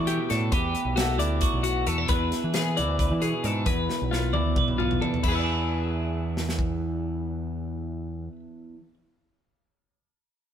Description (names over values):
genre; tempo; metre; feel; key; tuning
math rock and midwest emo; 268 BPM (eighths); 7/8; straight; unclear; A4 = 440 Hz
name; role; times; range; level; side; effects
twelve-string electric guitar; accompaniment; 0.0-8.9 s; E2 to B4; -30 LUFS; right 4 dB; none
twelve-string electric guitar; arpeggios; 0.0-8.4 s; E4 to E5; -30 LUFS; left 6 dB; none
growling fingered electric bass; bass; 0.0-8.3 s; B1 to E3; -28 LUFS; equal; overdrive
modern studio drum kit; drums; 0.1-6.7 s; crash cymbal, hi-hat, kick drum, snare drum, toms; -29 LUFS; equal; none
room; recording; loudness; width
moderate stone room reverb, RT60 1.2 s; band playing live in one room; -24 LUFS; side -9 dB against mid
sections
0.0-5.2 A section; 5.2-8.4 B section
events
drum fill 3.9-5.2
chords
0.0 Em11; 2.1 E7b9; 5.2 E7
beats
0.08 0.30 | 0.53 0.75 0.97 1.20 1.42 1.65 1.87 | 2.10 2.32 2.54 2.77 2.99 3.22 3.44 | 3.67 3.89 4.12 4.34 4.56 4.79 5.01 | 5.24 5.46 5.69 5.91 6.13 6.36 6.58 | 6.81 7.03 7.26 7.48 7.71 7.93 8.15